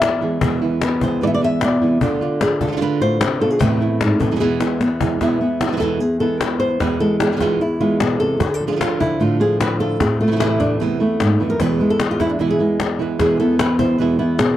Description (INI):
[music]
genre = flamenco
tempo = 150 BPM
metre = 4/4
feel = straight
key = E phrygian dominant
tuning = A4 = 440 Hz
[part]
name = flamenco guitar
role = melody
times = 0.0-14.6 s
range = E2 to E5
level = -17 LUFS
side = equal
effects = none
[part]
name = flamenco guitar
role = stabs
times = 0.0-14.4 s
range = E2 to F4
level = -22 LUFS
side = right 6 dB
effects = none
[part]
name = cajon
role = percussion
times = 0.0-14.6 s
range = none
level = -23 LUFS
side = left 5 dB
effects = none
[sound]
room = light reverb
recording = dry, close 1970s-style studio recording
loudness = -16 LUFS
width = side -12 dB against mid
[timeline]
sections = 0.0-5.2 A section; 5.2-14.6 B section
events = drum fill 4.6-5.2; nylon-string guitar solo 5.2-14.6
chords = 0.0 E; 2.0 Dm; 3.6 Amadd9; 4.4 E; 8.4 Dm; 10.0 Amadd9; 11.6 E